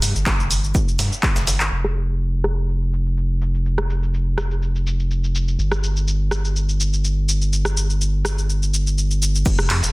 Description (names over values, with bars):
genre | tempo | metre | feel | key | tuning
deep house | 124 BPM | 4/4 | swing 53% on 16ths | unclear | A4 = 441 Hz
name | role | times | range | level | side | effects
round analog bass | bass | 0.0-9.9 s | F1 to G2 | -20 LUFS | equal | sidechain pumping
electronic snare drum and shaker | drums | 0.0-1.7, 9.5-9.9 s | none | -31 LUFS | equal | sidechain pumping on hats, high-pass filter on hats, studio reverb, high-pass filter on snare, sidechain pumping on perc, high-pass filter on perc, high-pass filter on room
punchy analog drum machine | drums | 0.0-9.9 s | crash cymbal, handclaps, hi-hat, rim click, shaker | -24 LUFS | equal | low-pass filter on snare, studio reverb, low-pass filter on perc, low-pass filter on hats, low-pass filter on cymbals
electronic kick drum | drums | 0.3-1.3, 9.5-9.6 s | none | -20 LUFS | equal | studio reverb
room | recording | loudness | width
digital ambience | dense, heavily limited modern master | -18 LUFS | side -24 dB against mid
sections
0.0-1.7 A section; 1.7-9.5 B section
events
drum fill 1.2-1.7; filter sweep on drum 1.7-9.5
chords
none